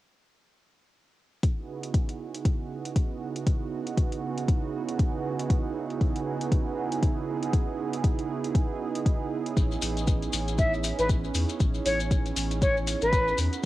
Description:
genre	deep house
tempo	118 BPM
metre	4/4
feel	swing 58% on 16ths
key	C# minor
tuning	A4 = 439 Hz
part	warm analog pad	sustained chords	1.4-13.7 s	C#3 to G#4	-31 LUFS	right 6 dB	wide subtle chorus, sidechain pumping, cassette tape
part	electronic hi-hat	drums	1.4-13.6 s	none	-38 LUFS	equal	cassette tape
part	electronic kick drum	drums	1.4-13.2 s	none	-25 LUFS	left 1 dB	cassette tape
part	warm sub bass	bass	9.6-13.5 s	A1 to E2	-30 LUFS	left 1 dB	sidechain pumping
part	maracas	percussion	9.6-13.7 s	none	-37 LUFS	left 8 dB	none
part	breathy mellow silver concert flute	melody	10.6-13.4 s	B4 to E5	-27 LUFS	left 1 dB	cassette tape, analog delay
room	light reverb, digital ambience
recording	home recording on cassette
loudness	-25 LUFS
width	side -16 dB against mid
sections	1.4-13.7 A section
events	none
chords	1.4 C#m11; 9.3 Amaj9#11

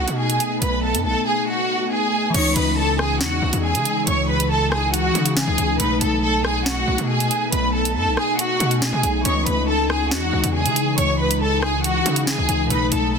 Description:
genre	hip hop, drill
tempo	139 BPM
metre	4/4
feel	half-time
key	C# minor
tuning	A4 = 440 Hz
part	warm symphonic violin section	melody	0.0-13.2 s	F#4 to C#6	-21 LUFS	right 1 dB	none
part	glassy digital keys	accompaniment	0.0-13.2 s	B2 to D#4	-28 LUFS	left 4 dB	chorus
part	glassy FM pad	sustained chords	0.0-13.2 s	C#3 to D#4	-25 LUFS	left 1 dB	ensemble chorus, built-in reverb
part	distorted 808-style bass	bass	0.0-13.2 s	B1 to C#3	-24 LUFS	equal	distortion
part	drill drum kit	drums	0.1-13.0 s	crash cymbal, hi-hat, rim click, snare drum	-24 LUFS	right 1 dB	none
room	light reverb, digital ambience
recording	dense, heavily limited modern master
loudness	-17 LUFS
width	side -6 dB against mid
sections	0.0-2.3 A section; 2.3-13.2 B section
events	none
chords	0.0 B7; 2.3 C#madd9; 5.8 B7; 9.3 C#madd9

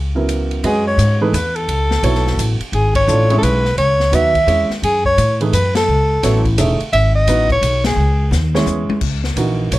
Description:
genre	modal jazz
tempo	172 BPM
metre	3/4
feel	swing 63% on 8ths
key	F# dorian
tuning	A4 = 440 Hz
part	upright bass	bass	0.0-9.8 s	E1 to A2	-16 LUFS	equal	none
part	warm upright piano	accompaniment	0.1-9.8 s	C#3 to E5	-19 LUFS	right 3 dB	none
part	open jazz drum kit	drums	0.3-9.8 s	crash cymbal, hi-hat, kick drum, ride cymbal, snare drum, toms	-24 LUFS	left 2 dB	none
part	mellow soprano saxophone	melody	0.7-8.3 s	G#4 to E5	-16 LUFS	equal	none
room	little or no reverb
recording	close, detailed microphones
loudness	-13 LUFS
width	side -17 dB against mid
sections	0.6-9.0 A section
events	band accent 2.9, 5.7, 7.8; drum fill 8.3-9.0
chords	0.0 C#m7; 0.6 F#m9; 2.7 C#m; 4.8 F#m9; 6.9 C#m; 9.0 C#madd9

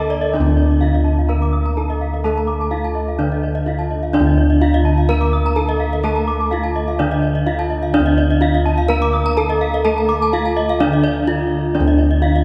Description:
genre	gamelan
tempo	126 BPM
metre	4/4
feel	straight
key	D pelog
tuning	A4 = 441 Hz
part	gamelan-type bronze metallophone	melody	0.0-12.4 s	D4 to Bb4	-24 LUFS	equal	none
part	gamelan-type bronze metallophone	accompaniment	0.0-12.4 s	D3 to Bb3	-29 LUFS	equal	none
part	gamelan-type bronze metallophone	arpeggios	0.0-12.3 s	D5 to Eb6+35c	-26 LUFS	equal	none
part	gamelan-type bossed gongs	bass	0.0-12.4 s	D2 to A4	-20 LUFS	equal	none
part	gamelan-type bronze metallophone	arpeggios	0.1-12.4 s	D5 to D6	-28 LUFS	equal	none
room	wet church reverb, RT60 3.7 s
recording	recorded in a church or concert hall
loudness	-17 LUFS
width	mono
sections	0.3-12.4 A section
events	none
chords	none

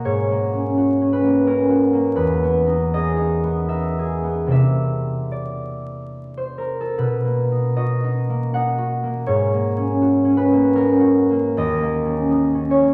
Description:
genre	classical, solo harp piece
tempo	70-85 BPM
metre	3/4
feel	rubato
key	unclear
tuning	A4 = 438 Hz
part	concert harp	solo	0.0-12.9 s	D#2 to F#5	-20 LUFS	equal	none
room	wet recital hall reverb, RT60 1.4 s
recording	vinyl crackle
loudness	-19 LUFS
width	mono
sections	0.0-12.9 A section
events	none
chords	0.1 G#m11; 2.2 Emaj7; 4.5 C9; 7.0 Bmaj7; 9.3 G#m11; 11.6 D#5

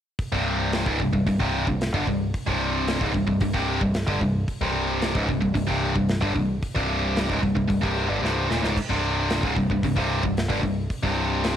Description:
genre	heavy metal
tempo	112 BPM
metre	4/4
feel	straight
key	unclear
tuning	A4 = 440 Hz
part	big rock drum kit	drums	0.2-11.6 s	crash cymbal, hi-hat, kick drum, snare drum	-29 LUFS	equal	none
part	tight distorted guitar	riff	0.3-11.6 s	C2 to D3	-23 LUFS	equal	distortion, cassette tape
part	growling picked electric bass	bass	0.3-11.5 s	C1 to G1	-29 LUFS	equal	overdrive
room	studio ambience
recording	home recording on cassette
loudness	-22 LUFS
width	side -10 dB against mid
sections	0.2-11.6 A section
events	drum fill 8.2-8.8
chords	0.2 C5

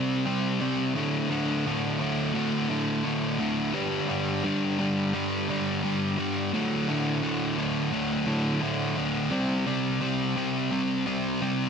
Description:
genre	rock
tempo	86 BPM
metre	4/4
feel	straight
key	unclear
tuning	A4 = 440 Hz
part	overdriven electric guitar	solo	0.0-11.7 s	D2 to C4	-25 LUFS	equal	digital delay
room	light reverb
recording	dense, heavily limited modern master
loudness	-25 LUFS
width	side -6 dB against mid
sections	0.0-11.7 A section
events	none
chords	0.0 C5; 1.0 D5; 3.7 G5; 6.5 D5; 9.3 C5

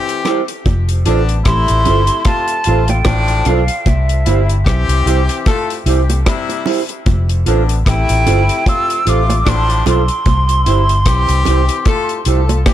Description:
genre	roots reggae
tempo	75 BPM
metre	4/4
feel	swing 57% on 16ths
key	C major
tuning	A4 = 439 Hz
part	clear horn section	second line	0.0-12.7 s	A2 to A4	-21 LUFS	left 5 dB	dub echo
part	deep reggae drum kit	drums	0.1-12.7 s	hi-hat, kick drum, rim click	-17 LUFS	left 1 dB	none
part	bongos	percussion	0.2-12.7 s	none	-23 LUFS	right 6 dB	none
part	mellow electric guitar	accompaniment	0.3-12.4 s	E4 to C5	-21 LUFS	right 7 dB	warbly pitch drift, dub echo
part	vintage muted fingered electric bass	bass	0.7-12.6 s	F1 to C2	-14 LUFS	equal	none
part	hollow concert flute	melody	1.5-12.2 s	E5 to E6	-18 LUFS	right 2 dB	dub echo
room	small room reverb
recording	none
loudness	-12 LUFS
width	side -12 dB against mid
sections	0.0-12.7 A section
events	none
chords	0.0 C; 0.7 F; 3.9 C; 7.1 F; 10.3 C

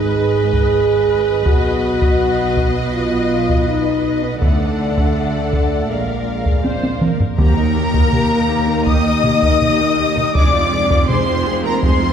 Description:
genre	cinematic, epic orchestral film score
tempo	81 BPM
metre	4/4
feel	straight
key	Eb major from 7.4 s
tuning	A4 = 439 Hz
part	warm symphonic violin section	melody	0.0-12.1 s	D#5 to Eb6	-23 LUFS	left 2 dB	none
part	warm symphonic violin section	second line	0.0-12.1 s	Bb4 to D#5	-24 LUFS	left 5 dB	none
part	clear symphonic viola section	accompaniment	0.0-12.1 s	Ab3 to B#4	-26 LUFS	equal	none
part	mellow French horn section	sustained chords	0.0-12.1 s	G#3 to G#4	-20 LUFS	equal	none
part	clear symphonic double bass section	bass	0.0-12.1 s	F1 to Eb2	-25 LUFS	right 3 dB	none
part	rich symphonic cello section	bass	0.0-12.1 s	Eb2 to D3	-24 LUFS	right 2 dB	none
part	solo taiko drums	drums	0.5-12.1 s	none	-18 LUFS	equal	none
part	hollow concert flute	second line	7.4-12.1 s	Bb4 to Eb5	-26 LUFS	left 1 dB	none
part	dark tuba	bass	7.4-12.1 s	F1 to Eb2	-23 LUFS	right 1 dB	none
part	timpani	percussion	7.4-8.5 s	Eb3	-24 LUFS	right 1 dB	none
room	wet scoring stage reverb, RT60 2.0 s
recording	heard from further back in the room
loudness	-14 LUFS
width	side -8 dB against mid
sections	0.0-7.4 A section; 7.4-12.1 B section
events	drum fill 6.6-7.4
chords	0.0 G#m; 1.5 B; 4.4 D; 5.9 A#7; 7.4 Eb; 10.4 Fm

